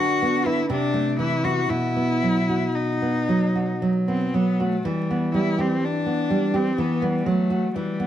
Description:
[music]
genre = romantic duo for cello and classical guitar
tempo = 56-64 BPM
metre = 3/4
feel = rubato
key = unclear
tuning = A4 = 440 Hz
[part]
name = rich cello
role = melody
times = 0.0-8.1 s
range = G3 to F#4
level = -24 LUFS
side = left 3 dB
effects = none
[part]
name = nylon-string guitar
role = accompaniment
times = 0.0-8.1 s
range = B2 to B4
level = -22 LUFS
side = right 2 dB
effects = none
[sound]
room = moderate plate reverb, RT60 2.7 s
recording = vinyl crackle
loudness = -20 LUFS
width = side -11 dB against mid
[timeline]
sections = 0.0-8.1 A section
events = none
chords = 0.0 Bm/D; 0.7 Am/C; 1.7 B; 4.9 Em; 6.8 B5/E

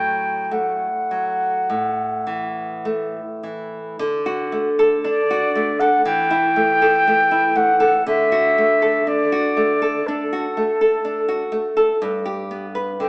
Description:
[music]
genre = romantic duo for flute and classical guitar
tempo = 50-63 BPM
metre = 4/4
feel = rubato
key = D major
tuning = A4 = 440 Hz
[part]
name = mellow concert flute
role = melody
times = 0.0-13.1 s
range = A4 to G5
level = -18 LUFS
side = equal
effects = none
[part]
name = nylon-string guitar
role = accompaniment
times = 0.0-13.1 s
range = G2 to B4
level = -20 LUFS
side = equal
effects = none
[sound]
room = moderate large studio reverb, RT60 1.4 s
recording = band playing live in one room, small speaker sound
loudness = -16 LUFS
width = side -31 dB against mid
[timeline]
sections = 0.0-4.0 A section; 4.0-13.1 B section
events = none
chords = 0.0 F#m/A; 1.7 A5; 4.0 D; 6.1 A5/E; 8.1 D; 12.0 G

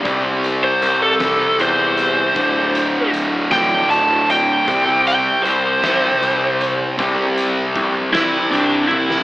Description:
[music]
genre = quiet-loud alternative rock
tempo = 52 BPM (dotted quarters)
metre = 6/8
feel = straight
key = unclear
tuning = A4 = 440 Hz
[part]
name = lead guitar through a small cranked amp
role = melody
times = 0.0-9.2 s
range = D4 to A5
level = -17 LUFS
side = equal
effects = overdrive, digital delay
[part]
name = fuzz guitar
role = riff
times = 0.0-9.2 s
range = D2 to C4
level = -19 LUFS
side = equal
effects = distortion
[part]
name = fuzz picked electric bass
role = bass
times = 0.1-9.1 s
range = D1 to E2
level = -22 LUFS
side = equal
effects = overdrive
[part]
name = oversized low-tuned drum kit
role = drums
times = 0.1-9.2 s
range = hi-hat, kick drum, snare drum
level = -28 LUFS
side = equal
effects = none
[sound]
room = studio reverb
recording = AM radio sound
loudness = -14 LUFS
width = side -18 dB against mid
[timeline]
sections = 0.0-9.2 A section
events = lead electric guitar solo 0.0-9.2; drum fill 8.9-9.2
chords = 0.1 C; 2.4 D5; 4.7 C5

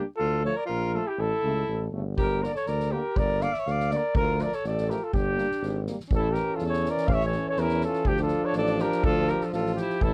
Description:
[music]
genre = balkan folk, Balkan brass band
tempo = 122 BPM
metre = 2/4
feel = swing 54% on 16ths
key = unclear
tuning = A4 = 440 Hz
[part]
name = mellow flugelhorn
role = melody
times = 0.0-10.1 s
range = G4 to F5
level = -30 LUFS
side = equal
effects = none
[part]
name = warm alto saxophone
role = second line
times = 0.0-10.1 s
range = D4 to D5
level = -35 LUFS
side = equal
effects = none
[part]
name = clear French horn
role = accompaniment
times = 0.0-10.1 s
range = A3 to D4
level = -37 LUFS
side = equal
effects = none
[part]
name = clear euphonium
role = accompaniment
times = 0.0-10.1 s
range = C#3 to G3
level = -36 LUFS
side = equal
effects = none
[part]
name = warm tuba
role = bass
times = 0.2-10.1 s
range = G1 to E2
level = -32 LUFS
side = equal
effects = none
[part]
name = soft-mallet drum kit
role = percussion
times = 2.2-10.1 s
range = kick drum, snare drum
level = -32 LUFS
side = equal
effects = none
[sound]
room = light reverb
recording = dry, close 1970s-style studio recording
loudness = -27 LUFS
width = mono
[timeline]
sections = 0.0-6.1 A section; 6.1-10.1 B section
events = none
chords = 0.2 Dm; 1.2 A; 2.2 Gm; 4.1 Dm; 5.1 Gm; 6.1 A; 8.1 Dm

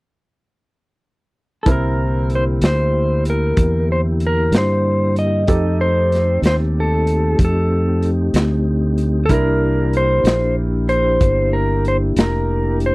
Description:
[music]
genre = slow blues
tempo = 63 BPM (dotted quarters)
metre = 12/8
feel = straight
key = C mixolydian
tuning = A4 = 440 Hz
[part]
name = clean lap steel guitar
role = melody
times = 1.6-12.9 s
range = A4 to Eb5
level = -19 LUFS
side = equal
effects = none
[part]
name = mellow tonewheel organ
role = sustained chords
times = 1.6-12.9 s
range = D3 to G4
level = -23 LUFS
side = left 1 dB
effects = slow rotary speaker
[part]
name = clear upright piano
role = accompaniment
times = 1.7-12.9 s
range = C4 to Bb4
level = -26 LUFS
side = right 2 dB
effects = none
[part]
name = fingered electric bass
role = bass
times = 1.7-12.9 s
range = F1 to G2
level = -18 LUFS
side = equal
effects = none
[part]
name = crunchy breakbeat drum kit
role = drums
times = 1.7-12.9 s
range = hi-hat, kick drum, snare drum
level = -17 LUFS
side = equal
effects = none
[sound]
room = little or no reverb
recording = dry, close 1970s-style studio recording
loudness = -14 LUFS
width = side -23 dB against mid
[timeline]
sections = 0.0-1.7 A section; 1.7-12.9 B section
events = none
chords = 0.0 N.C.; 1.7 C7; 5.5 F7; 9.3 C7

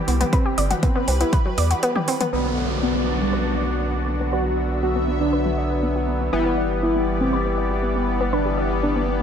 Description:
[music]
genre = melodic techno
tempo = 120 BPM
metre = 4/4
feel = straight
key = B phrygian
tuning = A4 = 440 Hz
[part]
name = lush unison pad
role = sustained chords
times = 0.0-9.2 s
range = E3 to E5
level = -28 LUFS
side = equal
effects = chorus, phaser, sidechain pumping
[part]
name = analog pluck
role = arpeggios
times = 0.0-9.1 s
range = F#3 to D5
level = -27 LUFS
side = equal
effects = chorus, sidechain pumping, dub echo
[part]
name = round analog bass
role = bass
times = 0.1-9.2 s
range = G1 to E2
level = -25 LUFS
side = equal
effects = tube saturation, sidechain pumping
[part]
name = deep house drum kit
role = drums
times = 0.1-2.3 s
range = hi-hat, toms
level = -27 LUFS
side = left 1 dB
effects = overdrive, sidechain pumping on hats, sidechain pumping on toms
[part]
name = wide unison lead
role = melody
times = 0.3-9.1 s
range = G3 to F#4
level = -26 LUFS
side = equal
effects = sidechain pumping, dub echo
[part]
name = electronic kick drum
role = drums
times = 0.3-1.4 s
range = none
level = -20 LUFS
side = equal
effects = overdrive
[part]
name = sync-sweep polysynth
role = stabs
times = 2.3-9.2 s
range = D3 to B3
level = -25 LUFS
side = left 2 dB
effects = chorus, vintage 12-bit sampler grit, sidechain pumping, dub echo
[part]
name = downlifter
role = sound effects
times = 2.3-6.3 s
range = none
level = -31 LUFS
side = right 1 dB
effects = none
[sound]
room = moderate digital room reverb, RT60 1.2 s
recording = none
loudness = -19 LUFS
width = side -8 dB against mid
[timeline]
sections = 0.0-2.3 A section; 2.3-9.2 B section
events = filter sweep on analog polysynth 2.3-9.2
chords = 0.0 C; 2.3 Bm; 6.3 G6

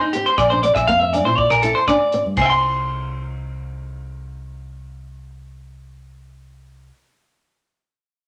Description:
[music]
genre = highlife guitar band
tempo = 120 BPM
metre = 4/4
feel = straight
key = unclear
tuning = A4 = 440 Hz
[part]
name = flamenco guitar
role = accompaniment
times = 0.0-2.5 s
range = Bb3 to E4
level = -28 LUFS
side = equal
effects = none
[part]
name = clean electric guitar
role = arpeggios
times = 0.0-7.0 s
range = Eb4 to C6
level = -19 LUFS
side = equal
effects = none
[part]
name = warm soul drum kit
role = drums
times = 0.1-2.5 s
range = crash cymbal, hi-hat, kick drum, rim click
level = -32 LUFS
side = equal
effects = none
[part]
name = fingered electric bass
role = bass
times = 0.4-6.9 s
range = Bb1 to Bb2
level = -30 LUFS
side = equal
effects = none
[part]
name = agogo bells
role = percussion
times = 0.4-2.5 s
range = none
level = -28 LUFS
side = equal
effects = none
[sound]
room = moderate studio reverb, RT60 0.7 s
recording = none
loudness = -18 LUFS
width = mono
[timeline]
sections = 0.0-2.4 A section; 2.4-6.4 B section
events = clean electric guitar solo 0.0-2.4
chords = 0.4 Bb; 2.4 N.C.

